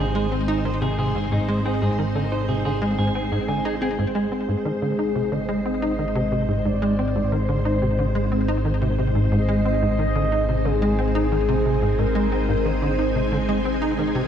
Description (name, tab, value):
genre	ambient, sequencer-driven space music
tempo	90 BPM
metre	4/4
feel	straight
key	Ab lydian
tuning	A4 = 439 Hz
part	string machine, full ensemble	sustained chords	0.0-14.3 s	Ab3 to Ab5	-26 LUFS	equal	ensemble chorus
part	clean electric guitar	arpeggios	0.0-4.0 s	Eb4 to Ab5	-29 LUFS	right 1 dB	auto-pan, ping-pong delay
part	tight sequencer bass	riff	0.0-14.2 s	Ab2 to Eb4	-24 LUFS	equal	wide subtle chorus, ping-pong delay
part	analog drone	bass	0.0-14.3 s	Ab1	-25 LUFS	equal	chorus
part	pulsing gated texture	texture	0.0-4.0 s	C5	-43 LUFS	right 1 dB	none
part	mellow horn-like synth lead	melody	4.0-13.7 s	Ab4 to Eb5	-27 LUFS	left 1 dB	wide subtle chorus, ping-pong delay
room	wet echo chamber reverb, RT60 2.4 s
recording	echo-heavy mix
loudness	-20 LUFS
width	side -9 dB against mid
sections	0.0-4.0 A section; 4.0-14.3 B section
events	none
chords	0.0 Ab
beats	0.65 | 1.32 1.99 2.65 3.32 | 3.99 4.65 5.32 5.99 | 6.65 7.32 7.99 8.65 | 9.32 9.99 10.65 11.32 | 11.99 12.65 13.32 13.99